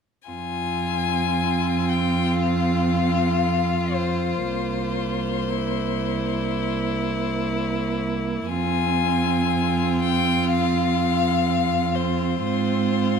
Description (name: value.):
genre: classical, slow romantic movement for string quartet.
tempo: 59 BPM.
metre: 4/4.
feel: uneven beats, rubato.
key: F minor.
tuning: A4 = 440 Hz.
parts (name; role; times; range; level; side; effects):
clear violin; melody; 0.3-13.2 s; C5 to Ab5; -26 LUFS; left 10 dB; none.
clear violin; second line; 0.3-13.2 s; E4 to F4; -28 LUFS; left 5 dB; none.
warm viola; accompaniment; 0.3-13.2 s; Bb3 to C4; -26 LUFS; right 3 dB; none.
rich cello; bass; 0.3-13.2 s; C2 to Ab2; -25 LUFS; right 6 dB; none.
room: light reverb.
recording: none.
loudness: -20 LUFS.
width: side -6 dB against mid.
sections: 0.3-13.2 A section.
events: none.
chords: 0.3 Fm; 4.5 C7; 8.5 Fm; 12.4 Fm/Ab.